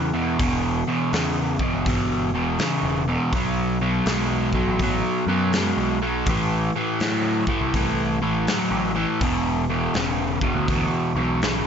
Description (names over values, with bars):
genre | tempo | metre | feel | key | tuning
blues rock power trio and southern rock | 82 BPM | 4/4 | swing 64% on 8ths | unclear | A4 = 440 Hz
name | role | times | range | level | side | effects
crunchy overdriven guitar | riff | 0.0-11.7 s | E2 to G#3 | -22 LUFS | equal | none
growling picked electric bass | bass | 0.0-11.6 s | E1 to A2 | -27 LUFS | equal | overdrive
big rock drum kit | drums | 0.4-11.6 s | hi-hat, kick drum, snare drum | -28 LUFS | equal | none
room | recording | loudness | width
light reverb | nothing above 7.7 kHz | -20 LUFS | side -7 dB against mid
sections
0.0-11.7 A section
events
none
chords
0.0 Em; 3.3 B5; 6.3 Am; 9.2 E7(no3)